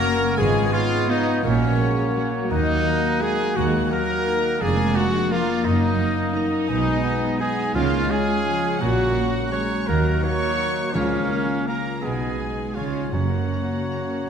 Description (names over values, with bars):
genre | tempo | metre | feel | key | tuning
classical | 148-186 BPM | 3/4 | rubato | F# major | A4 = 442 Hz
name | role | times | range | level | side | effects
dark studio violin section | melody | 0.0-14.0 s | E#5 to A#5 | -46 LUFS | left 5 dB | none
mellow clarinet | second line | 0.0-14.3 s | C#4 to C#5 | -30 LUFS | left 2 dB | none
mellow hollow concert flute | second line | 0.0-14.3 s | E#5 to A#5 | -37 LUFS | left 2 dB | none
warm oboe | second line | 0.0-14.3 s | C#5 to F#5 | -32 LUFS | right 1 dB | none
warm studio violin section | second line | 0.0-14.3 s | C#5 to C#6 | -34 LUFS | left 3 dB | none
mellow bassoon | accompaniment | 0.0-14.3 s | A#3 to C#4 | -31 LUFS | right 1 dB | none
warm studio viola section | accompaniment | 0.0-14.3 s | E#3 to D#4 | -28 LUFS | equal | none
dark French horn section | sustained chords | 0.0-14.3 s | G#3 to F#4 | -30 LUFS | left 3 dB | none
concert harp | arpeggios | 0.0-14.3 s | E#2 to C#5 | -30 LUFS | left 9 dB | none
warm trumpet | stabs | 0.0-14.3 s | C#4 to C#5 | -27 LUFS | right 2 dB | none
dark studio double bass section | bass | 0.4-13.4 s | E#1 to D#2 | -28 LUFS | right 4 dB | none
warm studio cello section | bass | 0.4-14.3 s | D#2 to D#3 | -29 LUFS | right 4 dB | none
timpani | percussion | 7.8-8.2, 10.9-13.7 s | F#2 to C#3 | -32 LUFS | left 2 dB | none
room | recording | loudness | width
wet concert hall reverb, RT60 1.9 s | none | -19 LUFS | side -7 dB against mid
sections
0.0-14.3 A section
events
none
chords
0.4 C#7/G#; 1.4 F#/A#; 2.5 D#m; 4.6 A#7/E#; 5.6 D#m/F#; 6.7 G#m/B; 7.7 C#; 8.8 F#/A#; 9.9 D#m7; 10.9 A#m/C#; 12.0 G#m/B; 12.7 C#; 13.1 F#